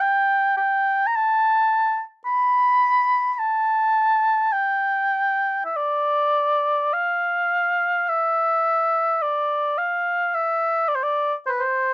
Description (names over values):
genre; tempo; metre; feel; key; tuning
celtic folk; 53 BPM; 4/4; rubato; G mixolydian; A4 = 440 Hz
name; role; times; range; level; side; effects
warm oboe; solo; 0.0-11.9 s; B4 to B5; -18 LUFS; equal; cassette tape
room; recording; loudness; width
light reverb; home recording on cassette; -18 LUFS; side -23 dB against mid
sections
0.0-6.9 A section; 6.9-11.9 B section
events
none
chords
none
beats
0.04 1.15 | 2.27 3.40 4.55 5.75 | 6.94 8.09 9.22 10.33 | 11.43